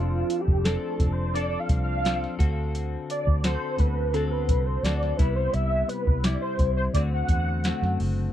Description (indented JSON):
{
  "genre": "indie pop, bedroom pop",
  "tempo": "86 BPM",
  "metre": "4/4",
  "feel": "straight",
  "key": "unclear",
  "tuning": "A4 = 437 Hz",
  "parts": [
    { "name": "warm velvety synth lead", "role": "melody", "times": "0.0-8.1 s", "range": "F4 to F#5", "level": "-29 LUFS", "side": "right 1 dB", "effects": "ensemble chorus" },
    { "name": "direct-recorded clean electric guitar", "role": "accompaniment", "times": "0.0-8.3 s", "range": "C3 to A4", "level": "-32 LUFS", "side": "left 6 dB", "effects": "analog chorus, warbly pitch drift" },
    { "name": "vintage muted fingered electric bass", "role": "bass", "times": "0.0-8.3 s", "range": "F1 to F#2", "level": "-26 LUFS", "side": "equal", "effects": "none" },
    { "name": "soft vintage rhythm box", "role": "drums", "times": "0.3-8.2 s", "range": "hi-hat, kick drum, snare drum", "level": "-24 LUFS", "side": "equal", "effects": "overdrive" }
  ],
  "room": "little or no reverb",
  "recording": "dry, close 1970s-style studio recording",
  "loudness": "-23 LUFS",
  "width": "side -11 dB against mid",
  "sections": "0.0-8.3 A section",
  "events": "soft synth lead solo 0.0-8.3",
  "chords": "0.0 F6; 2.4 D7; 5.2 Cmaj7; 6.9 D7",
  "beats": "0.65 1.35 2.05 | 2.75 3.44 4.14 4.84 | 5.54 6.24 6.94 7.64"
}